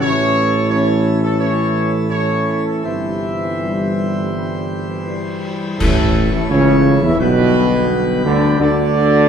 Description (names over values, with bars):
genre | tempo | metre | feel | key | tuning
classical, ceremonial fanfare | 84 BPM | 4/4 | uneven beats | A major | A4 = 440 Hz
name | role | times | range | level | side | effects
dark trumpet section | melody | 0.0-9.3 s | A4 to E5 | -21 LUFS | right 1 dB | none
mellow French horn section | sustained chords | 0.0-9.3 s | E3 to E4 | -22 LUFS | left 4 dB | none
pipe organ, plenum | sustained chords | 0.0-9.3 s | D3 to C#5 | -22 LUFS | equal | none
warm trombone section | sustained chords | 0.0-9.3 s | A2 to E3 | -21 LUFS | right 2 dB | none
dark tuba | bass | 0.0-9.3 s | G1 to E2 | -19 LUFS | right 2 dB | none
cymbal swell, clash cymbals and concert bass drum | percussion | 2.9-7.2 s | none | -22 LUFS | equal | none
room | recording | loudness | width
wet scoring stage reverb, RT60 1.7 s | minimal, uncompressed stereo recording | -14 LUFS | side -7 dB against mid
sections
0.0-5.8 A section; 5.8-9.3 B section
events
band accent 5.8-6.5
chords
0.0 A; 2.9 C/G; 5.8 A; 7.2 G/B; 8.6 D